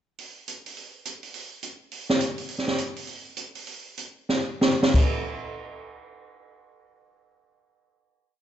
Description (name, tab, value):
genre	jazz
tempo	178-210 BPM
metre	4/4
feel	swing 62% on 8ths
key	none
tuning	none
part	open jazz drum kit	drums	0.2-5.0 s	crash cymbal, hi-hat, kick drum, snare drum	-25 LUFS	equal	none
room	moderate recital hall reverb, RT60 1.4 s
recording	recorded in a church or concert hall, nothing above 7.9 kHz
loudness	-25 LUFS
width	side -11 dB against mid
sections	0.2-4.9 A section; 4.9-7.6 final hit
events	slowing down 2.5-4.9; drum fill 4.3-4.9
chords	none